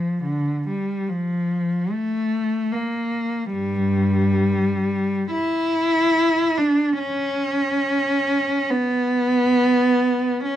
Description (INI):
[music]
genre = classical, free, expressive piece for unaccompanied cello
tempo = 70 BPM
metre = 4/4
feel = uneven beats, rubato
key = unclear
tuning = A4 = 440 Hz
[part]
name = rich cello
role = solo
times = 0.0-10.6 s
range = G2 to E4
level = -19 LUFS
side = equal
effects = none
[sound]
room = light reverb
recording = dark, warm production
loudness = -19 LUFS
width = side -11 dB against mid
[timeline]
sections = 0.0-10.6 A section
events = none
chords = none